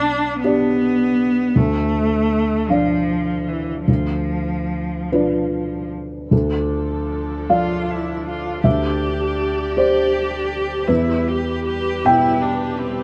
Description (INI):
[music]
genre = neoclassical piano and strings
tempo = 47-54 BPM (dotted quarters)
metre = 6/8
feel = rubato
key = D dorian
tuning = A4 = 440 Hz
[part]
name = muted cello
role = second line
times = 0.0-13.0 s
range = E3 to G4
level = -24 LUFS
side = equal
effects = none
[part]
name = felt-muted upright piano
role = accompaniment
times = 0.0-13.0 s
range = B1 to G5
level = -22 LUFS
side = equal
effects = none
[part]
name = muted studio string section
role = sustained chords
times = 6.3-13.0 s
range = F3 to D5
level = -31 LUFS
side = equal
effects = none
[sound]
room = light reverb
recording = none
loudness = -20 LUFS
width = mono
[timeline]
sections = 0.0-6.3 A section; 6.3-13.0 B section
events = none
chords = 0.0 G/B; 1.5 Dm; 8.6 G5/D; 10.9 Em